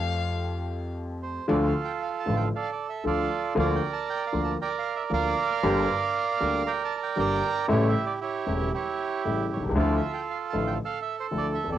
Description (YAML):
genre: tango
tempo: 116 BPM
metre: 4/4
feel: rubato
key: D minor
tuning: A4 = 437 Hz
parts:
  - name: warm violin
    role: second line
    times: 0.0-0.9 s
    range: F5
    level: -34 LUFS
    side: left 8 dB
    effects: cassette tape
  - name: warm baby grand piano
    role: accompaniment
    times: 0.0-11.8 s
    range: E1 to G4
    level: -27 LUFS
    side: left 2 dB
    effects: cassette tape
  - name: upright bass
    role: bass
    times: 0.0-11.8 s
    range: E1 to F2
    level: -32 LUFS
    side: equal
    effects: none
  - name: bandoneon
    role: melody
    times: 1.2-11.8 s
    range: E4 to Bb5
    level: -28 LUFS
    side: right 6 dB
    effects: cassette tape
room: moderate booth ambience, RT60 0.2 s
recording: home recording on cassette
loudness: -24 LUFS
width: side -11 dB against mid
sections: 0.0-1.5 A section; 1.5-11.8 B section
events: violin solo 0.0-1.5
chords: 0.0 Fadd9; 1.5 Dm; 3.6 Bb/D; 5.6 Gm; 7.7 A7; 9.8 Dmadd9